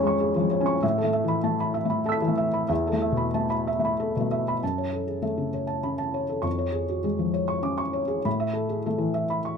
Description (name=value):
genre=neoclassical minimalist piano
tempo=92-101 BPM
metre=3/4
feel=rubato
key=F# minor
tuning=A4 = 440 Hz
part: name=felt-muted upright piano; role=solo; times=0.0-9.6 s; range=E2 to B6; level=-23 LUFS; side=left 1 dB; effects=none
room=little or no reverb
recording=close, detailed microphones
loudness=-23 LUFS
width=side -6 dB against mid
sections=0.0-4.6 A section; 4.6-9.6 B section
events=none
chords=0.0 C#/E#; 0.8 Asus2; 2.7 Esus4; 4.6 F#m; 6.5 C#/E#; 8.3 Asus2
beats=0.22 | 0.83 1.44 2.06 | 2.70 3.35 3.99 | 4.62 5.23 5.85 | 6.46 7.06 7.66 | 8.26 8.85 9.46